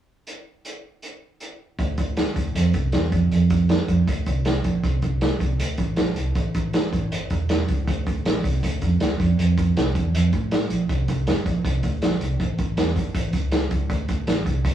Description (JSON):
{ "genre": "jangly indie pop", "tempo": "158 BPM", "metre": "4/4", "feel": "straight", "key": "D minor", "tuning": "A4 = 440 Hz", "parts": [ { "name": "vintage drum kit", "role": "drums", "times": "0.3-14.7 s", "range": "hi-hat, kick drum, snare drum", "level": "-23 LUFS", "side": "equal", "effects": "none" }, { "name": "vintage muted fingered electric bass", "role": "bass", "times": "1.8-14.7 s", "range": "E1 to A2", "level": "-22 LUFS", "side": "right 1 dB", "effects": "none" } ], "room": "moderate studio reverb, RT60 0.7 s", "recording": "rough rehearsal-room recording, warm saturation, small room ambience", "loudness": "-20 LUFS", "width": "side -10 dB against mid", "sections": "0.3-1.8 A section; 1.8-7.9 B section; 7.9-14.7 C section", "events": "none", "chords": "none" }